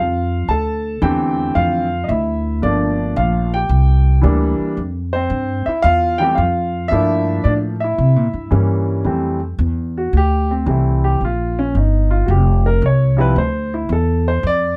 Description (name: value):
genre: jazz piano trio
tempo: 112 BPM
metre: 4/4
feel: swing 68% on 8ths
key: F major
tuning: A4 = 440 Hz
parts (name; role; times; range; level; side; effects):
- warm grand piano; melody; 0.0-14.8 s; D3 to A5; -21 LUFS; equal; none
- upright bass; bass; 0.0-14.8 s; F1 to C3; -19 LUFS; equal; none
room: light reverb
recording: close, detailed microphones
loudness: -17 LUFS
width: mono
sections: 0.0-9.1 A section; 9.1-14.8 B section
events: grand piano solo 9.1-14.8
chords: 0.5 Dm7; 2.6 Gm7; 3.7 C9; 4.8 Fmaj7sus2; 6.9 Gm9; 8.0 C7b9; 9.1 Fmaj9; 11.2 Eb13 (rootless); 13.4 Dm9